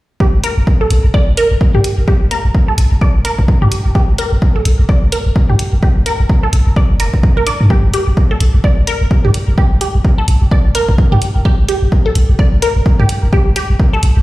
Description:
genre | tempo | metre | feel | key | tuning
minimal techno | 128 BPM | 4/4 | swing 58% on 16ths | G minor | A4 = 440 Hz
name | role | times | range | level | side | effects
resonant blip pluck | riff | 0.2-14.0 s | G4 to D5 | -19 LUFS | right 1 dB | phaser, sidechain pumping, dub echo
electronic kick drum | drums | 0.2-13.9 s | none | -12 LUFS | equal | none
punchy sub bass | bass | 0.3-14.2 s | F1 to G2 | -11 LUFS | equal | tube saturation, sidechain pumping
electronic hi-hat | drums | 0.4-14.1 s | none | -23 LUFS | right 1 dB | none
room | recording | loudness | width
little or no reverb | played on a big sound system in a bare room, large studio reverb | -10 LUFS | side -18 dB against mid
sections
0.2-14.2 A section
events
none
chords
0.2 Gm

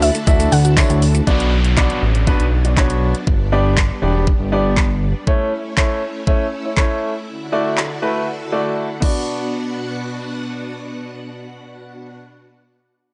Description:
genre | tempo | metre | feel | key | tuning
dance-pop | 120 BPM | 4/4 | straight | B minor | A4 = 439 Hz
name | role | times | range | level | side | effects
mallet-like synth pluck | melody | 0.0-0.9 s | E5 to F#5 | -24 LUFS | equal | chorus, sidechain pumping, tape echo
string machine, violins | sustained chords | 0.0-12.2 s | B2 to F#5 | -31 LUFS | equal | ensemble chorus, sidechain pumping
fat analog bass | bass | 0.0-5.1 s | E1 to D2 | -19 LUFS | equal | sidechain pumping
pop drum kit | drums | 0.0-9.1 s | crash cymbal, handclaps, hi-hat, kick drum, shaker | -20 LUFS | equal | overdrive
tambourine | percussion | 0.0-1.1 s | none | -40 LUFS | equal | none
mallet-like synth pluck | arpeggios | 0.1-1.3 s | E3 to E5 | -30 LUFS | equal | none
clear baby grand piano | accompaniment | 0.3-12.2 s | A3 to E5 | -24 LUFS | equal | sidechain pumping
downlifter | sound effects | 1.3-5.3 s | none | -31 LUFS | equal | none
room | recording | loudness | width
light reverb, digital ambience | dry, gritty hardware recording, nothing above 10.4 kHz | -18 LUFS | mono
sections
0.0-1.3 A section; 1.3-9.3 B section; 9.3-13.1 C section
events
drop 0.0-1.3; drums muted 8.8-9.3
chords
0.0 Dadd9; 1.3 Bm; 3.3 G; 5.3 A; 7.3 Dadd9; 9.0 Bm

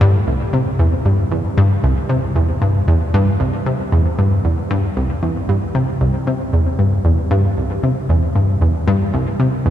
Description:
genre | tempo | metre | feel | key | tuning
ambient | 115 BPM | 4/4 | straight | unclear | A4 = 440 Hz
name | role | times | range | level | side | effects
analog pluck | solo | 0.0-9.7 s | C2 to C3 | -14 LUFS | equal | chorus, vintage 12-bit sampler grit, analog delay
room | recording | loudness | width
wet cathedral reverb, RT60 6.4 s | in a vast, echoing space, cassette tape | -14 LUFS | side -11 dB against mid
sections
0.0-9.7 A section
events
none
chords
none

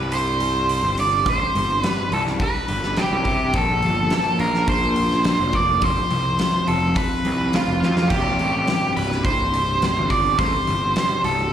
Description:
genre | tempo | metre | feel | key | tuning
quiet-loud alternative rock | 105 BPM | 4/4 | straight | unclear | A4 = 440 Hz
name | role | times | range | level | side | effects
octave-fuzz lead guitar | melody | 0.0-11.5 s | F4 to D5 | -21 LUFS | right 2 dB | distortion, plate reverb, slapback echo, analog delay
twelve-string electric guitar | arpeggios | 0.0-11.5 s | C2 to F4 | -26 LUFS | left 2 dB | tremolo, plate reverb
fuzz picked electric bass | bass | 0.0-11.5 s | C1 to C3 | -24 LUFS | equal | overdrive
big rock drum kit | drums | 0.1-11.4 s | crash cymbal, hi-hat, kick drum, snare drum | -25 LUFS | equal | none
room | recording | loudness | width
light reverb | live gig heard through the venue's PA, recital hall reverb | -18 LUFS | side -9 dB against mid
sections
0.0-11.5 A section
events
drum fill 7.8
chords
0.0 C5; 3.5 Bb; 5.8 F; 8.1 C5

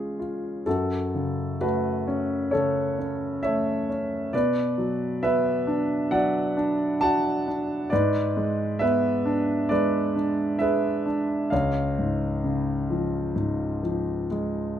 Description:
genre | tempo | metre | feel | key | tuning
classical, lyrical solo piano | 66 BPM | 4/4 | rubato | F# minor | A4 = 441 Hz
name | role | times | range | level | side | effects
warm grand piano | solo | 0.0-14.8 s | C#2 to A5 | -23 LUFS | equal | none
room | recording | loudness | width
light reverb | close, detailed microphones | -23 LUFS | side -10 dB against mid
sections
0.0-14.8 A section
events
none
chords
0.0 C#; 0.7 F#m; 4.3 Bm; 7.9 G#dim; 11.5 C#

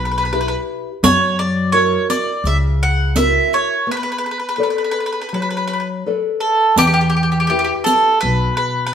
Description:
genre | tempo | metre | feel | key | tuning
italian folk, Italian serenade | 84 BPM | 4/4 | rubato | B minor | A4 = 440 Hz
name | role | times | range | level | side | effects
mandolin | melody | 0.0-8.9 s | G4 to F#5 | -17 LUFS | right 1 dB | none
nylon-string guitar | accompaniment | 0.0-8.9 s | B2 to D5 | -21 LUFS | left 1 dB | none
upright bass | bass | 0.0-8.5 s | B1 to F#2 | -20 LUFS | left 1 dB | none
riq | percussion | 1.0-8.2 s | none | -20 LUFS | equal | none
room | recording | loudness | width
wet stone room reverb, RT60 1.1 s | band playing live in one room | -14 LUFS | side -8 dB against mid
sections
0.0-6.8 A section; 6.8-8.9 B section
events
break 3.9-6.8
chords
0.0 Em; 1.0 F#7; 3.9 Bm7; 6.8 Em

